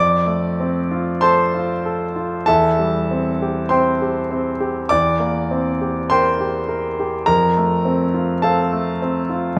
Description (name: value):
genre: classical, romantic nocturne for solo piano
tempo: 46-52 BPM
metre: 4/4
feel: rubato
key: F major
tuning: A4 = 439 Hz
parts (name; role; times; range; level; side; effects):
- warm concert grand piano; solo; 0.0-9.6 s; E2 to D6; -19 LUFS; equal; none
room: wet recital hall reverb, RT60 1.5 s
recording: none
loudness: -19 LUFS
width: mono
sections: 0.0-9.6 A section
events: none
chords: 0.0 F; 2.5 C/E; 4.9 C7/E; 7.3 F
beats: 1.22 2.48 3.72 | 4.92 6.11 7.27 8.43